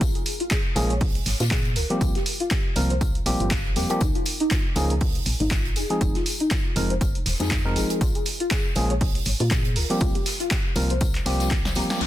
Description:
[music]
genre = deep house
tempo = 120 BPM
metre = 4/4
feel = swing 57% on 16ths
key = unclear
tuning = A4 = 440 Hz
[part]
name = soft round pluck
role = arpeggios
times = 0.0-12.1 s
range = Eb4 to Bb5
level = -30 LUFS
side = left 2 dB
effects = ensemble chorus, sidechain pumping, ping-pong delay
[part]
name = woody FM bass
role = bass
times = 0.0-12.1 s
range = Eb1 to Bb2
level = -26 LUFS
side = equal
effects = sidechain pumping
[part]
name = electronic kick drum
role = drums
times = 0.0-11.6 s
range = none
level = -25 LUFS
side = equal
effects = none
[part]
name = punchy analog drum machine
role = drums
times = 0.0-12.1 s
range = crash cymbal, handclaps, hi-hat, snare drum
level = -29 LUFS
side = right 1 dB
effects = none
[part]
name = soft-mallet drum kit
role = drums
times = 0.0-12.0 s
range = hi-hat, snare drum, tambourine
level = -35 LUFS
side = left 2 dB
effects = high-pass filter on hats, high-pass filter on snare, high-pass filter on perc, high-pass filter on room
[part]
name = tine electric piano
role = stabs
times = 0.8-12.0 s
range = F3 to Bb4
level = -28 LUFS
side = equal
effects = sidechain pumping, tape echo
[part]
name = downlifter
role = sound effects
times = 12.0-12.1 s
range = none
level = -25 LUFS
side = left 2 dB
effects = none
[sound]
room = studio ambience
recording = dense, heavily limited modern master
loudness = -21 LUFS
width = side -14 dB against mid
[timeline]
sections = 0.0-12.0 A section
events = drum fill 11.6-12.0; band accent 11.9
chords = 0.0 Bbm7; 2.0 C7sus4; 4.0 Db69; 5.8 Fm7; 8.0 Bbm7; 10.0 C7sus4

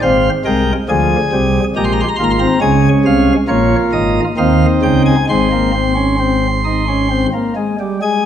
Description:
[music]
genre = classical, baroque-style 4-part fugue for pipe organ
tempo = 68 BPM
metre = 3/4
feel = uneven beats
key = Ab major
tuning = A4 = 440 Hz
[part]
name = pipe organ, sparkling flutes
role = solo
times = 0.0-8.3 s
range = Ab1 to C6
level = -12 LUFS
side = equal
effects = none
[sound]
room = wet recital hall reverb, RT60 1.4 s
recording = none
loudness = -12 LUFS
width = side -9 dB against mid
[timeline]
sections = 0.0-8.0 A section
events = none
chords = 0.0 Fm/Ab; 1.8 Bb5; 2.6 Bbm7; 4.4 Eb7; 5.3 Ab

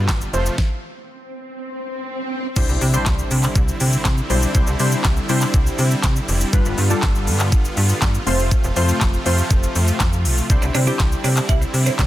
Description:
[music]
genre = dance-pop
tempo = 121 BPM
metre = 4/4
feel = straight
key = C major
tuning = A4 = 440 Hz
[part]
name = glassy digital keys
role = accompaniment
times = 0.0-11.7 s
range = G3 to C5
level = -25 LUFS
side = left 2 dB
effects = chorus, sidechain pumping
[part]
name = supersaw chords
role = sustained chords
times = 0.0-12.1 s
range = B2 to F4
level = -26 LUFS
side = right 1 dB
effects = sidechain pumping
[part]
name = slap-like FM bass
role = bass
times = 0.0-12.1 s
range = F1 to C3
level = -20 LUFS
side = equal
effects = sidechain pumping
[part]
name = pop drum kit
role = drums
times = 0.1-12.1 s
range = crash cymbal, handclaps, hi-hat, kick drum, shaker, snare drum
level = -19 LUFS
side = equal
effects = soft clipping on snare
[part]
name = swell and impact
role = sound effects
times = 1.1-4.5 s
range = none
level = -28 LUFS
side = equal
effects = none
[part]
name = twelve-string electric guitar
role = riff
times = 10.6-12.1 s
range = C4 to E4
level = -26 LUFS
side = right 5 dB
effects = lush chorus
[sound]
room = digital ambience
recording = dense, heavily limited modern master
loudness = -16 LUFS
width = side -14 dB against mid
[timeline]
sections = 0.0-2.6 A section; 2.6-12.1 B section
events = stop 0.6-2.6; swell 1.1-2.6; impact 2.6-4.5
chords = 0.3 F; 1.6 N.C.; 2.6 Cadd9; 6.5 G7; 8.3 F; 10.5 Cadd9

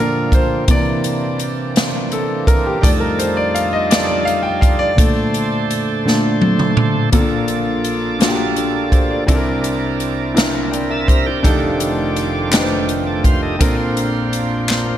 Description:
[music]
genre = slow gospel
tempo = 56 BPM (dotted quarters)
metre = 6/8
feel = straight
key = Bb major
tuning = A4 = 439 Hz
[part]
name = clear concert grand piano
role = accompaniment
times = 0.0-15.0 s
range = F1 to G5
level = -18 LUFS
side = left 1 dB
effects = none
[part]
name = tonewheel organ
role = sustained chords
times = 0.0-15.0 s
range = Eb3 to Bb5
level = -22 LUFS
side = right 4 dB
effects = slow rotary speaker, overdrive
[part]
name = swinging big-band drum kit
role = drums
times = 0.3-14.9 s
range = hi-hat, kick drum, snare drum, toms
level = -17 LUFS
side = equal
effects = none
[part]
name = group handclap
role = percussion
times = 12.5-15.0 s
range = none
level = -20 LUFS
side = left 4 dB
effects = none
[sound]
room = light reverb, small room ambience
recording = none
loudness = -14 LUFS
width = side -11 dB against mid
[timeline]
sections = 0.0-7.1 A section; 7.1-15.0 B section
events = grand piano solo 0.0-7.1; drum fill 6.1-7.1, 14.7; grand piano fill 14.7; tonewheel organ fill 14.7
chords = 0.0 Bbmaj7; 0.7 C9; 2.8 F13; 5.0 Bbmaj9; 7.1 Bbmaj7; 9.3 C9; 11.4 F13; 13.6 Bbmaj9

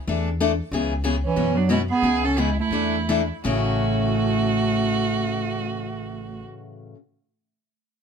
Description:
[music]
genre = acoustic string swing (jazz manouche)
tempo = 159-187 BPM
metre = 4/4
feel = swing 59% on 8ths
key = A major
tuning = A4 = 439 Hz
[part]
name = picked steel-string acoustic guitar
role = accompaniment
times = 0.1-7.0 s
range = A2 to A4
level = -26 LUFS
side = left 5 dB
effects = none
[part]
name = upright bass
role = bass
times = 0.1-6.4 s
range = A1 to F#2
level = -27 LUFS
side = equal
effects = none
[part]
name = mellow bass clarinet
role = melody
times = 1.2-6.4 s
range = E3 to C#4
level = -24 LUFS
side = right 3 dB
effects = none
[part]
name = warm violin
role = second line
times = 1.3-6.4 s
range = C#4 to A4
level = -28 LUFS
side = right 7 dB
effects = none
[sound]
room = light reverb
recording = none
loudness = -20 LUFS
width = side -6 dB against mid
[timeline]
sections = 0.0-3.5 A section; 3.5-6.5 B section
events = slowing down 0.7-3.5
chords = 0.1 E7sus4; 0.7 C#m7; 1.4 F#7sus4; 2.0 C#m7; 2.7 E7sus4; 3.5 A6

